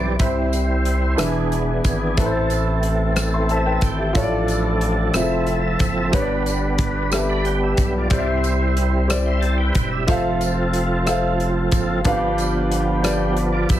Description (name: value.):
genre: slow gospel.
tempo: 61 BPM (dotted quarters).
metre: 6/8.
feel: straight.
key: C major.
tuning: A4 = 439 Hz.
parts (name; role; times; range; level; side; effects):
clear upright piano; accompaniment; 0.0-13.8 s; G2 to C6; -23 LUFS; left 1 dB; none.
overdriven tonewheel organ; sustained chords; 0.0-13.8 s; E3 to C6; -23 LUFS; right 2 dB; fast rotary speaker, chorus vibrato.
saturated sub bass; bass; 0.0-13.8 s; E1 to C2; -23 LUFS; equal; none.
modern studio drum kit; drums; 0.2-13.8 s; hi-hat, kick drum, rim click; -23 LUFS; equal; none.
tambourine; percussion; 0.2-13.8 s; none; -36 LUFS; right 6 dB; none.
room: light reverb.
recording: heavily compressed radio sound.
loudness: -17 LUFS.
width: side -12 dB against mid.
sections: 0.2-13.8 A section.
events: tonewheel organ fill 3.2-4.2.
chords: 0.2 C; 1.2 E7; 2.2 Am; 4.2 Dm/A; 5.1 Fmaj7; 6.1 G; 8.1 C; 10.1 Fmaj7; 12.1 G7.